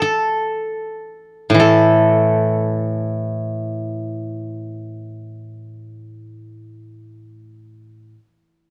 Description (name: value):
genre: chinese traditional, Chinese solo plucked strings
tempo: free time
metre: none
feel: none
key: unclear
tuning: A4 = 440 Hz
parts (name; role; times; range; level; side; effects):
- steel-string zither; solo; 0.0-8.2 s; A2 to A4; -19 LUFS; equal; none
room: small room ambience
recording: dry, close 1970s-style studio recording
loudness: -18 LUFS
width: mono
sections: 0.0-1.6 A section; 1.6-6.0 B section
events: slowing down 0.0-1.6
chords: none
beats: free time